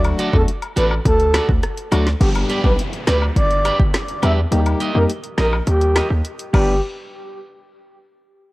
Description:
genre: dancehall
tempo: 104 BPM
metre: 4/4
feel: straight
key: G major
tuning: A4 = 440 Hz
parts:
  - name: percussive organ stab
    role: accompaniment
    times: 0.0-6.8 s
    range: F#3 to G4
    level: -22 LUFS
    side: left 2 dB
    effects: chorus, sidechain pumping, low-pass filter
  - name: hard-hitting 808-style bass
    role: bass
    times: 0.0-6.8 s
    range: G1 to F2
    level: -18 LUFS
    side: equal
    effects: none
  - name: afro-pop drum kit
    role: drums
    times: 0.0-6.7 s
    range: crash cymbal, hi-hat, kick drum, rim click, snare drum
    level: -19 LUFS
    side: equal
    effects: none
  - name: woodblock and cabasa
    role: percussion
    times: 0.0-6.8 s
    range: none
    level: -29 LUFS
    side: left 4 dB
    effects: none
  - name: electric guitar at the edge of break-up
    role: arpeggios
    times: 0.2-6.7 s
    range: F#4 to Eb5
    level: -27 LUFS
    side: right 4 dB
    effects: spring reverb, low-pass filter
  - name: breathy flute-like synth lead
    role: melody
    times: 0.3-6.8 s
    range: G4 to E5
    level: -22 LUFS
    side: equal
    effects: chorus, low-pass filter, digital delay
  - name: downlifter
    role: sound effects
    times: 2.2-6.8 s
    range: none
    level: -33 LUFS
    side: equal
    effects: none
room: digital ambience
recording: worn, warbling old tape, cassette tape, warbly pitch drift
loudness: -15 LUFS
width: side -20 dB against mid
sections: 0.0-2.2 A section; 2.2-6.8 B section; 6.8-8.5 C section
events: filter sweep 2.2-6.8; kick muted 4.5-6.8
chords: 0.0 D; 2.2 G; 4.5 Eb; 6.5 G; 6.8 N.C.

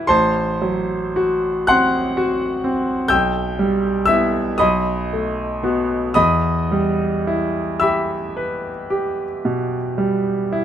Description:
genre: classical, romantic nocturne for solo piano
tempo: 36-43 BPM (dotted quarters)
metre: 12/8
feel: rubato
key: E minor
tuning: A4 = 440 Hz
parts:
  - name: bright concert grand piano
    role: solo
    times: 0.0-10.6 s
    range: A1 to G6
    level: -17 LUFS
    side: equal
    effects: none
room: little or no reverb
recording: close, detailed microphones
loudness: -17 LUFS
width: side -10 dB against mid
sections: 0.0-10.6 A section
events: none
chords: 0.1 F#dim/A; 3.1 Em/B; 4.6 B7; 6.2 Em

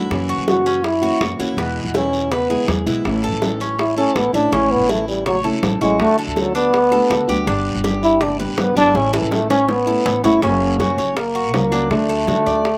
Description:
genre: latin, Cuban son and guajira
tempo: 163 BPM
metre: 4/4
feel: straight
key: unclear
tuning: A4 = 439 Hz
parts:
  - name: nylon-string guitar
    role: accompaniment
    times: 0.0-12.7 s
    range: B2 to G4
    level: -26 LUFS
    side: equal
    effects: none
  - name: Cuban tres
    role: arpeggios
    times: 0.0-12.8 s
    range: B3 to D5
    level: -28 LUFS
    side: equal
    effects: none
  - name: upright bass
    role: bass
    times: 0.0-12.8 s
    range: F#1 to D3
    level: -28 LUFS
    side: equal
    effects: none
  - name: bongos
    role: percussion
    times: 0.1-12.8 s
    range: none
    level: -26 LUFS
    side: equal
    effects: none
  - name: congas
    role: percussion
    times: 0.1-12.8 s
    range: none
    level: -30 LUFS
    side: equal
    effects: none
  - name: guiro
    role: percussion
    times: 0.1-12.8 s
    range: none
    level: -36 LUFS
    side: equal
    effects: none
  - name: warm trombone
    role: melody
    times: 0.5-12.8 s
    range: D3 to F#4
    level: -19 LUFS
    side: equal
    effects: none
room: little or no reverb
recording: recorded outdoors, with no room sound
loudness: -18 LUFS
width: mono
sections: 0.0-10.4 A section; 10.4-12.8 B section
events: trombone solo 0.0-10.4; drum fill 9.0-10.4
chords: 0.1 F#7; 1.6 E; 3.1 A; 6.0 D; 7.5 G; 9.0 A; 10.4 F#; 11.9 D

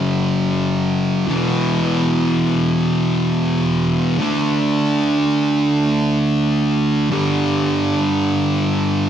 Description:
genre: rock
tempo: free time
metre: none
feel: none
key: D major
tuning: A4 = 440 Hz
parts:
  - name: thick fuzz guitar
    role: solo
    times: 0.0-9.1 s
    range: E2 to D4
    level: -16 LUFS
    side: equal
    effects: distortion
room: moderate scoring stage reverb, RT60 1.6 s, digital ambience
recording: dark, warm production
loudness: -16 LUFS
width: side -9 dB against mid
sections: 0.0-9.1 A section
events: none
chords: 0.0 F#5; 1.3 E5; 4.2 D5; 7.1 G5

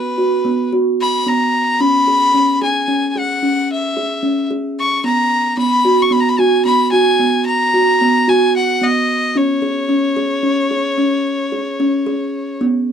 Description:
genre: contemporary instrumental, contemporary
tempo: 222 BPM (eighths)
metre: 7/8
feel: straight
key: C# dorian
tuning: A4 = 441 Hz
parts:
  - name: rich violin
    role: melody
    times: 0.0-12.6 s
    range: B4 to C#6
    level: -16 LUFS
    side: left 2 dB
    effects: none
  - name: kalimba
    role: arpeggios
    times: 0.0-12.9 s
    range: B3 to G#4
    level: -16 LUFS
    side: right 2 dB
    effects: none
room: little or no reverb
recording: close, detailed microphones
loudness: -13 LUFS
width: side -8 dB against mid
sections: 0.0-12.9 A section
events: none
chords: 0.0 B5; 1.8 C#7(no3); 5.6 B5; 9.4 C#5

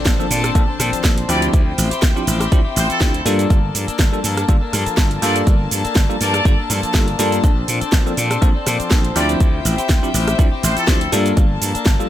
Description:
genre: filtered disco house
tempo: 122 BPM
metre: 4/4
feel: swing 54% on 16ths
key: G dorian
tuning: A4 = 440 Hz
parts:
  - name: warm studio violin section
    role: sustained chords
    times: 0.0-12.1 s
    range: Bb3 to A5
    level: -26 LUFS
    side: left 1 dB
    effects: sidechain pumping
  - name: twelve-string electric guitar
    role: riff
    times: 0.0-12.1 s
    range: F3 to A4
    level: -25 LUFS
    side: left 6 dB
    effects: vintage 12-bit sampler grit, sidechain pumping
  - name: impact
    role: sound effects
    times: 0.0-1.5 s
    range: none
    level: -32 LUFS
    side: equal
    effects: none
  - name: slap bass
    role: bass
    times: 0.1-12.0 s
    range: G1 to Bb2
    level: -21 LUFS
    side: equal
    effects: tube saturation, sidechain pumping
  - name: electronic kick drum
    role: drums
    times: 0.1-12.0 s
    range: none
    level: -15 LUFS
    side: equal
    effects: none
  - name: house drum kit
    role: drums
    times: 0.1-12.1 s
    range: cabasa, hi-hat, rim click, snare drum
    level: -22 LUFS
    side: right 2 dB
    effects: sidechain pumping on hats, sidechain pumping on perc, sidechain pumping on cymbals
  - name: bell-like tine electric piano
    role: accompaniment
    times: 0.2-12.1 s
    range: F3 to A4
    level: -22 LUFS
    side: equal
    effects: phaser, sidechain pumping
  - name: muted trumpet section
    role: melody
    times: 1.3-11.2 s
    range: A4 to D5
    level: -24 LUFS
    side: equal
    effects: sidechain pumping, tape echo
room: little or no reverb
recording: none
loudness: -14 LUFS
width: side -12 dB against mid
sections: 0.0-12.1 A section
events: impact 0.0-1.5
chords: 0.0 Bbmaj9; 1.3 Dm11; 3.3 Gm9; 7.4 Bbmaj9; 9.2 Dm11; 11.1 Gm9

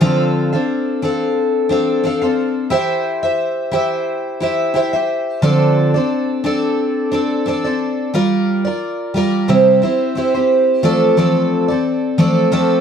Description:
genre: pop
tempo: 89 BPM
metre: 4/4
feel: swing 55% on 16ths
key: F major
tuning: A4 = 440 Hz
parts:
  - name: picked twelve-string acoustic guitar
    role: solo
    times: 0.0-12.8 s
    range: C3 to F5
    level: -14 LUFS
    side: equal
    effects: none
room: moderate studio reverb, RT60 0.6 s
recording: dark, warm production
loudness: -14 LUFS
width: side -7 dB against mid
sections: 0.0-10.8 A section; 10.8-12.8 B section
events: none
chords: 0.0 F6; 2.7 C/E; 5.4 F6; 8.1 Gm7; 9.5 C; 10.8 F6

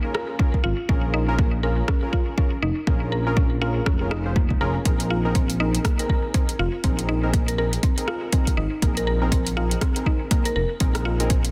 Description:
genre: afro house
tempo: 121 BPM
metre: 4/4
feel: swing 59% on 16ths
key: unclear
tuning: A4 = 440 Hz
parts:
  - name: mallet-like synth pluck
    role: arpeggios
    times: 0.0-11.4 s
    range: Bb3 to Bb4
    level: -30 LUFS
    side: equal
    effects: chorus, sidechain pumping, delay
  - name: warm analog keys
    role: stabs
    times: 0.0-11.4 s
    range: C4 to C5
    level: -32 LUFS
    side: equal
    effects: chorus, sidechain pumping, delay
  - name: deep house drum kit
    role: drums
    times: 0.1-11.5 s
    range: hi-hat, rim click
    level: -32 LUFS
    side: equal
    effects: overdrive
  - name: electronic kick drum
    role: drums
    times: 0.4-11.4 s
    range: none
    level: -24 LUFS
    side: equal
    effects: overdrive
  - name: smooth gliding synth bass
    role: bass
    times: 0.6-11.5 s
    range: F1 to Bb1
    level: -27 LUFS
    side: equal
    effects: sidechain pumping
room: little or no reverb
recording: dense, heavily limited modern master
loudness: -22 LUFS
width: mono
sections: 0.0-11.5 A section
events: none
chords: 0.0 Bbm7; 4.9 Abadd9

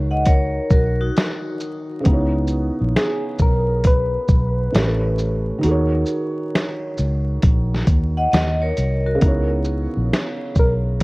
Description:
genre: lo-fi hip hop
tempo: 67 BPM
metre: 4/4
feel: swing 66% on 16ths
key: C# dorian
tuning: A4 = 442 Hz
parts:
  - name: felt-muted upright piano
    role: accompaniment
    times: 0.0-11.0 s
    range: A2 to C#5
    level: -25 LUFS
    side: right 1 dB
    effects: cassette tape
  - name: vintage muted fingered electric bass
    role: bass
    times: 0.0-11.0 s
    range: A1 to D#2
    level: -20 LUFS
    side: equal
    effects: none
  - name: vibraphone with hard mallets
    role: second line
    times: 0.1-2.0, 8.2-9.5 s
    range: D#4 to F#5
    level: -24 LUFS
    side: equal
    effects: tape echo
  - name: lo-fi sampler-style drum kit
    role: drums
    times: 0.3-11.0 s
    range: hi-hat, kick drum, shaker, snare drum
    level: -18 LUFS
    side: equal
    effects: none
  - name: soft struck synth lead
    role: melody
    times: 3.0-5.2, 10.6-10.7 s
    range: G#4 to B4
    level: -24 LUFS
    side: equal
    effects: chorus, tape echo
room: light reverb, digital ambience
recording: worn, warbling old tape, cassette tape, vinyl crackle, warbly pitch drift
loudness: -17 LUFS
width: side -24 dB against mid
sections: 0.0-11.0 A section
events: none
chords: 0.0 G#9sus4; 2.1 C#m7; 4.7 A9; 5.6 G#9sus4; 9.2 C#m7

